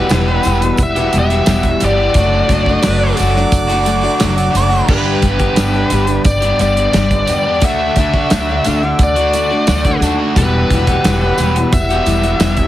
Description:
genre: folk rock and heartland rock.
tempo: 88 BPM.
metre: 4/4.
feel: straight.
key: unclear.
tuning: A4 = 440 Hz.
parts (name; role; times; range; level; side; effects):
biting lead guitar; melody; 0.0-12.7 s; B4 to E5; -18 LUFS; left 2 dB; overdrive.
picked steel-string acoustic guitar; accompaniment; 0.0-12.7 s; E2 to G4; -19 LUFS; left 4 dB; none.
mellow tonewheel organ; sustained chords; 0.0-12.7 s; G4 to E6; -28 LUFS; right 1 dB; none.
crunchy overdriven guitar; riff; 0.0-12.7 s; E2 to G4; -19 LUFS; right 2 dB; none.
upright bass; bass; 0.1-12.7 s; E1 to E2; -18 LUFS; equal; none.
natural country drum kit; drums; 0.1-12.7 s; crash cymbal, hi-hat, kick drum, snare drum; -17 LUFS; right 1 dB; none.
tambourine; percussion; 0.1-12.6 s; none; -33 LUFS; right 5 dB; none.
clear harmonica; second line; 2.9-4.9 s; B4 to D5; -20 LUFS; right 3 dB; analog delay.
room: light reverb, small room ambience.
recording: heavily compressed radio sound, multiband compression.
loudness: -11 LUFS.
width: side -13 dB against mid.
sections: 0.0-12.7 A section.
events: none.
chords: 0.0 Emadd9; 2.1 D/F#; 4.9 G; 7.6 D; 10.4 Emadd9.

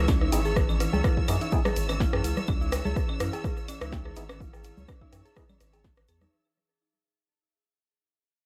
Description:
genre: minimal techno.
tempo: 125 BPM.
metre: 4/4.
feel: swing 54% on 16ths.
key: C# minor.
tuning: A4 = 440 Hz.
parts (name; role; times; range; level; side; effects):
saturated sub bass; bass; 0.0-6.3 s; G#1 to F#2; -32 LUFS; equal; sidechain pumping.
bright symphonic string section; texture; 0.0-6.3 s; E3 to E6; -39 LUFS; equal; sidechain pumping.
dark detuned synth bell; riff; 0.1-6.3 s; C#4 to G#4; -37 LUFS; equal; chorus, sidechain pumping, analog delay.
electronic kick drum; drums; 0.1-5.9 s; none; -30 LUFS; equal; cassette tape.
punchy analog drum machine; drums; 0.1-6.2 s; hi-hat, snare drum; -38 LUFS; equal; cassette tape.
electronic claves, rim click, woodblock and congas; percussion; 0.1-6.3 s; none; -34 LUFS; equal; overdrive, cassette tape, tape echo.
tube shaker; percussion; 0.1-6.3 s; none; -47 LUFS; equal; none.
percussive organ stab; stabs; 0.3-5.4 s; B3 to G#4; -38 LUFS; equal; subtle chorus, tape echo.
room: digital ambience.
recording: home recording on cassette.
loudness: -27 LUFS.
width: mono.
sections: 0.0-6.3 A section.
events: drop 0.0-6.3; fade-out 0.0-6.3.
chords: 0.0 C#m.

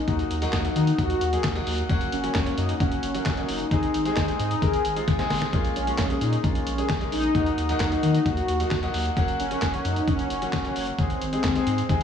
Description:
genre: synth-pop.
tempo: 132 BPM.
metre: 4/4.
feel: straight.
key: unclear.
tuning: A4 = 440 Hz.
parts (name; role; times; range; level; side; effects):
mellow synth brass; melody; 0.0-12.0 s; C4 to Ab4; -27 LUFS; left 1 dB; chorus, digital delay.
clear concert grand piano; accompaniment; 0.1-12.0 s; Gb3 to Bb4; -29 LUFS; left 1 dB; slapback echo.
round analog bass; bass; 0.1-12.0 s; Gb1 to Eb3; -29 LUFS; equal; none.
lo-fi sampler-style drum kit; drums; 0.1-12.0 s; handclaps, hi-hat, kick drum, snare drum; -27 LUFS; left 1 dB; none.
room: moderate scoring stage reverb, RT60 1.7 s, digital ambience.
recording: big arena sound, studio ambience.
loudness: -22 LUFS.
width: side -8 dB against mid.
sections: 0.0-12.0 A section.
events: drum fill 5.1-5.5.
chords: 0.1 Ebm; 1.9 Gb; 3.7 Ab; 5.5 Bbm7; 7.3 Ebm; 9.2 Gb; 11.0 Ab.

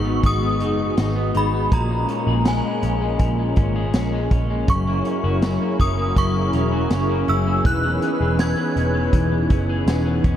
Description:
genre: dream pop.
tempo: 81 BPM.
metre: 4/4.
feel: straight.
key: G# minor.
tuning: A4 = 440 Hz.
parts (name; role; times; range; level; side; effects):
synth chime; melody; 0.0-9.8 s; G#5 to G#6; -26 LUFS; equal; ensemble chorus, phaser, diffuse ambient delay.
warm analog pad; sustained chords; 0.0-10.4 s; E3 to B4; -24 LUFS; equal; chorus.
electric guitar at the edge of break-up; arpeggios; 0.0-10.4 s; F#2 to A#4; -26 LUFS; left 3 dB; wide subtle chorus, diffuse ambient delay.
vintage muted picked electric bass; bass; 0.0-10.4 s; E1 to A#1; -23 LUFS; equal; none.
vintage drum kit; drums; 0.2-10.4 s; hi-hat, kick drum, snare drum, tambourine; -23 LUFS; equal; none.
room: moderate huge ambient reverb, RT60 8.5 s.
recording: dreamy mix soaked in reverb.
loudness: -18 LUFS.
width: side -10 dB against mid.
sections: 0.0-10.4 A section.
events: none.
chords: 0.0 G#m9; 1.7 G#sus24; 4.7 F#7; 7.6 C#m7/E.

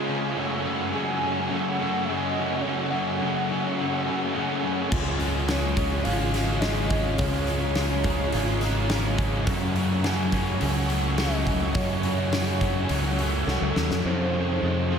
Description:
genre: rock, shoegaze and dream pop.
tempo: 105 BPM.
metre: 4/4.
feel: straight.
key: unclear.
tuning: A4 = 444 Hz.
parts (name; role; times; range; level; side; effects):
soft additive organ-like pad; sustained chords; 0.0-15.0 s; Ab4 to Db6; -36 LUFS; left 1 dB; ensemble chorus, built-in reverb.
electric guitar through a small old amp; arpeggios; 0.0-15.0 s; Eb3 to Ab4; -34 LUFS; equal; ensemble chorus, ping-pong delay.
biting overdriven guitar; riff; 0.0-15.0 s; F2 to Db4; -33 LUFS; equal; none.
raw garage guitar; riff; 0.0-15.0 s; F2 to Gb4; -31 LUFS; right 8 dB; overdrive, reverse reverb.
thick fuzz guitar; riff; 0.0-15.0 s; F2 to Db4; -30 LUFS; left 6 dB; distortion, lush chorus.
pure sine lead; melody; 0.9-15.0 s; A4 to Ab5; -33 LUFS; equal; chorus, tremolo, ping-pong delay.
growling fingered electric bass; bass; 4.9-15.0 s; Ab1 to Gb2; -27 LUFS; equal; overdrive.
huge arena drum kit; drums; 4.9-14.0 s; crash cymbal, hi-hat, kick drum, snare drum; -29 LUFS; equal; none.
room: wet huge ambient reverb, RT60 7.7 s.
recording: dreamy mix soaked in reverb.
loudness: -23 LUFS.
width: side -7 dB against mid.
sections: 0.0-14.0 A section.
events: drum fill 13.5-14.0.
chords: 0.4 Gbmadd9; 4.9 Db; 9.5 Gbmadd9; 14.0 Fm7.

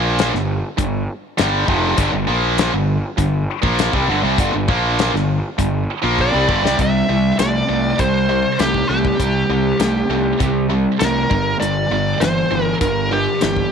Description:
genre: classic rock.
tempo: 100 BPM.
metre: 4/4.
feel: straight.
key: G minor.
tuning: A4 = 444 Hz.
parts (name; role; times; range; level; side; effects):
tight distorted guitar; riff; 0.0-13.7 s; F2 to Bb3; -18 LUFS; equal; distortion.
fuzz fingered electric bass; bass; 0.0-13.6 s; F1 to C2; -22 LUFS; right 1 dB; overdrive.
damped 70s drum kit; drums; 0.2-13.7 s; hi-hat, kick drum, snare drum; -22 LUFS; left 3 dB; none.
nasal lead guitar with a parked wah; melody; 6.2-13.7 s; G4 to E5; -20 LUFS; equal; overdrive.
room: light reverb, studio reverb.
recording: 1960s-style stereo.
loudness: -15 LUFS.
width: side -7 dB against mid.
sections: 0.0-6.8 A section; 6.8-13.7 B section.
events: drum fill 6.2-6.8.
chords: 0.0 Gm; 6.8 C5; 11.3 Gm.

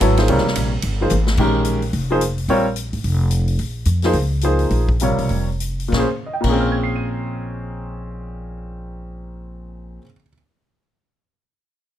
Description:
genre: modal jazz.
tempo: 186-218 BPM.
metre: 4/4.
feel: swing 61% on 8ths.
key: Bb dorian.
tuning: A4 = 440 Hz.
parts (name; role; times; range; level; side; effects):
clear grand piano; accompaniment; 0.0-10.3 s; Bb2 to Eb7; -20 LUFS; equal; none.
upright bass; bass; 0.0-10.0 s; F1 to F2; -21 LUFS; equal; none.
swinging big-band drum kit; drums; 0.0-6.5 s; crash cymbal, hi-hat, kick drum, ride cymbal, snare drum, toms; -27 LUFS; left 2 dB; none.
room: little or no reverb.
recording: close, detailed microphones.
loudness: -17 LUFS.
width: side -11 dB against mid.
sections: 0.0-1.4 A section; 1.4-5.9 B section; 5.9-8.5 C section.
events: drum fill 1.1; slowing down 3.6-5.9.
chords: 0.0 Bbm9.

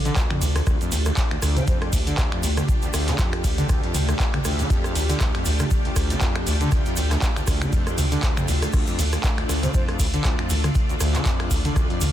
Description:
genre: acid house.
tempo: 119 BPM.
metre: 4/4.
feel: swing 56% on 16ths.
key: D minor.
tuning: A4 = 440 Hz.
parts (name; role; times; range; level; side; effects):
string machine, full ensemble; sustained chords; 0.0-12.1 s; A3 to D5; -29 LUFS; equal; ensemble chorus, sidechain pumping.
round analog bass; bass; 0.0-12.1 s; D2; -24 LUFS; equal; sidechain pumping.
overdriven acid bass; riff; 0.1-12.1 s; D2 to D3; -28 LUFS; equal; lush chorus, sidechain pumping, dub echo.
booming analog drum machine; drums; 0.1-12.1 s; crash cymbal, finger snaps, handclaps, hi-hat, ride cymbal, rim click, toms; -27 LUFS; equal; none.
egg shaker; percussion; 0.1-12.1 s; none; -36 LUFS; right 5 dB; none.
electronic kick drum; drums; 0.2-11.9 s; none; -23 LUFS; equal; overdrive.
breathy mellow silver concert flute; melody; 1.6-1.8, 9.6-9.8 s; C5; -37 LUFS; right 2 dB; dub echo.
room: digital ambience.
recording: dense, heavily limited modern master.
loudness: -20 LUFS.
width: side -12 dB against mid.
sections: 0.0-12.1 A section.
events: none.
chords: 0.0 Dm.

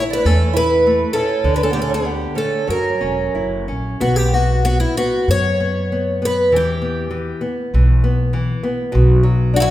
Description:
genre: fado-style ballad.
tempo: 96 BPM.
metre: 4/4.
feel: uneven beats, rubato.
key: unclear.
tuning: A4 = 439 Hz.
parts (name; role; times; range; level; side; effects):
picked twelve-string acoustic guitar; melody; 0.0-9.7 s; E4 to C#5; -18 LUFS; left 1 dB; none.
nylon-string guitar; accompaniment; 0.0-9.7 s; B2 to F#5; -22 LUFS; left 1 dB; none.
picked twelve-string acoustic guitar; second line; 0.1-3.6 s; B3 to E4; -23 LUFS; right 7 dB; none.
upright bass; bass; 0.2-9.7 s; E1 to F#2; -18 LUFS; equal; none.
room: moderate recital hall reverb, RT60 1.5 s.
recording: recorded in a church or concert hall.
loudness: -15 LUFS.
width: side -14 dB against mid.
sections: 0.0-4.0 A section; 4.0-9.7 B section.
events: none.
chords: 0.0 Aadd9; 1.5 D; 2.7 F#7; 4.0 B5; 6.5 Em; 8.9 Bm.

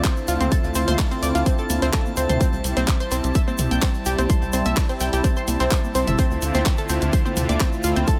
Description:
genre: progressive house.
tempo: 127 BPM.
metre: 4/4.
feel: straight.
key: D minor.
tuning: A4 = 439 Hz.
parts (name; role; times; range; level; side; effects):
warm analog pad; sustained chords; 0.0-8.2 s; D3 to F4; -29 LUFS; equal; chorus, sidechain pumping.
analog pluck; arpeggios; 0.0-8.2 s; C4 to G6; -28 LUFS; equal; chorus, cassette tape, sidechain pumping, tape echo.
electronic kick drum; drums; 0.0-8.2 s; none; -23 LUFS; equal; none.
house drum kit; drums; 0.0-8.2 s; handclaps, hi-hat; -32 LUFS; equal; none.
unplugged drum kit; drums; 0.0-8.2 s; hi-hat, snare drum; -43 LUFS; equal; none.
tube shaker; percussion; 0.0-8.2 s; none; -36 LUFS; equal; none.
drifting glass-harmonics texture; texture; 0.0-8.2 s; A5; -37 LUFS; equal; chorus, built-in reverb, sidechain pumping.
tight sequencer bass; bass; 0.3-8.0 s; G1 to D2; -26 LUFS; equal; sidechain pumping.
electronic congas and toms; percussion; 0.4-8.1 s; none; -31 LUFS; equal; sidechain pumping on perc, sidechain pumping on toms.
room: little or no reverb.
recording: none.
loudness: -21 LUFS.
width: mono.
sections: 0.0-8.2 A section.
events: none.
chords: 0.0 Dm7; 2.4 C; 6.2 Dm7.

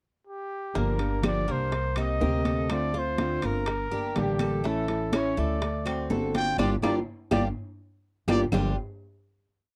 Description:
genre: latin, Cuban son and guajira.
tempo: 124 BPM.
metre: 4/4.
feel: straight.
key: G minor.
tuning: A4 = 440 Hz.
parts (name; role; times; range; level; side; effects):
breathy trumpet; melody; 0.3-8.4 s; G4 to G5; -34 LUFS; equal; none.
flamenco guitar; accompaniment; 0.7-8.7 s; G2 to G4; -32 LUFS; equal; none.
Cuban tres; arpeggios; 0.8-8.8 s; G3 to Bb4; -36 LUFS; equal; none.
upright bass; bass; 0.8-8.7 s; G1 to D2; -33 LUFS; equal; none.
bongos; percussion; 0.8-8.6 s; none; -36 LUFS; equal; none.
congas; percussion; 0.8-8.6 s; none; -35 LUFS; equal; none.
timbales; percussion; 1.0-8.6 s; none; -40 LUFS; equal; none.
claves; percussion; 1.2-8.6 s; none; -44 LUFS; equal; none.
room: light reverb.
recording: dry, close 1970s-style studio recording.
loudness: -27 LUFS.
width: mono.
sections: 0.0-0.8 pickup bar; 0.8-8.5 A section; 8.5-9.8 final chord.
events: band accent 6.6-8.5; drum fill 7.8-8.5.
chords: 0.0 N.C.; 0.8 Gm7; 1.7 Cm7; 2.7 Dm7; 3.7 Gm; 4.6 A; 5.6 D7; 6.6 Gm7.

